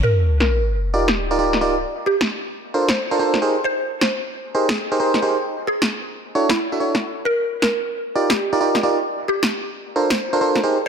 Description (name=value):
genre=UK garage, two-step garage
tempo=133 BPM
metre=4/4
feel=swing 65% on 16ths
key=Eb major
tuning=A4 = 443 Hz
part: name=mallet-like synth pluck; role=melody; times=0.0-10.9 s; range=E4 to C5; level=-24 LUFS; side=equal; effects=ensemble chorus, dub echo
part: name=sub drop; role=sound effects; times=0.0-1.8 s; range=none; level=-20 LUFS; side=equal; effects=none
part: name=electronic snare drum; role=drums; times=0.4-10.6 s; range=none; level=-22 LUFS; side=equal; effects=overdrive, low-pass filter on snare, low-pass filter on hats
part: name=FM electric piano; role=stabs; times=0.9-10.8 s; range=D4 to E5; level=-20 LUFS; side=right 2 dB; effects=chorus, dub echo
room=moderate plate reverb, RT60 1.4 s, digital ambience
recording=dense, heavily limited modern master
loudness=-18 LUFS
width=side -6 dB against mid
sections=0.0-10.9 A section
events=impact 0.0-1.8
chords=0.0 Ebmaj9; 1.8 Bbmaj9; 3.4 Abmaj9; 5.4 Dmaj9; 7.3 Ebmaj9; 9.1 Bbmaj9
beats=| 0.03 0.48 0.94 1.39 | 1.84 2.29 2.74 3.19 | 3.64 4.09 4.54 5.00 | 5.45 5.90 6.35 6.80 | 7.25 7.70 8.15 8.61 | 9.06 9.51 9.96 10.41 | 10.86